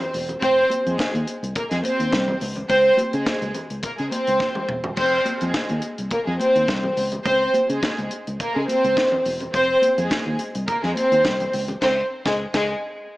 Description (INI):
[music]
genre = disco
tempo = 105 BPM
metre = 4/4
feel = straight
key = F minor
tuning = A4 = 440 Hz
[part]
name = warm studio violin section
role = second line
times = 0.0-12.7 s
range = Ab3 to C5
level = -20 LUFS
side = equal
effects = none
[part]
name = tight funk drum kit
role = drums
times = 0.0-12.7 s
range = crash cymbal, hi-hat, kick drum, snare drum, toms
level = -28 LUFS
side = equal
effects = none
[part]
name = congas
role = percussion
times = 0.0-11.8 s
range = none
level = -32 LUFS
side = left 1 dB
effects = none
[part]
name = fingered electric bass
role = bass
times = 0.1-12.7 s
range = E1 to Db3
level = -27 LUFS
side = equal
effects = none
[sound]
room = moderate echo chamber reverb, RT60 2.5 s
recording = small speaker sound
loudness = -19 LUFS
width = side -18 dB against mid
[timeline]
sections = 0.0-13.2 A section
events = drum fill 4.4-5.0; band accent 11.8-13.2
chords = 0.4 Fm7; 2.4 Db5; 5.0 Fm7; 7.0 Db5; 9.5 Fm7; 11.5 Db5